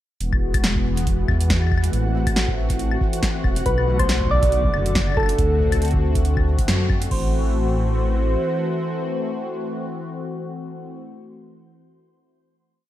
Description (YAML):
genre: IDM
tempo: 139 BPM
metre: 4/4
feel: swing 56% on 16ths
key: A melodic minor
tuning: A4 = 440 Hz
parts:
  - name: warm analog pad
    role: sustained chords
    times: 0.2-10.9 s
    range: B2 to F#4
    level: -26 LUFS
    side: left 1 dB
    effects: chorus
  - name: dark detuned saw bass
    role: bass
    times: 0.2-8.4 s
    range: E1 to F#2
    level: -21 LUFS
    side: equal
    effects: none
  - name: electro analog drum machine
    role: drums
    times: 0.2-7.1 s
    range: claves, hi-hat, snare drum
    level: -26 LUFS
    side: left 1 dB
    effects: none
  - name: flickering grainy texture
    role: texture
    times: 0.9-7.1 s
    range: F#4 to F#5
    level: -36 LUFS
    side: left 1 dB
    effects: built-in reverb
  - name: electro analog drum machine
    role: drums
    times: 0.3-7.2 s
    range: crash cymbal, kick drum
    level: -23 LUFS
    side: equal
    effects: none
  - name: soft struck synth lead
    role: melody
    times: 3.7-10.9 s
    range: A4 to D5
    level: -25 LUFS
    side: equal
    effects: chorus, ping-pong delay
room: light reverb, digital ambience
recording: dark, warm production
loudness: -18 LUFS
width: side -13 dB against mid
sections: 0.2-7.1 groove; 7.1-10.6 final chord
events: band accent 6.7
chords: 0.2 Eadd9; 1.9 Am6; 3.7 Bm7; 5.4 D7; 7.1 Am6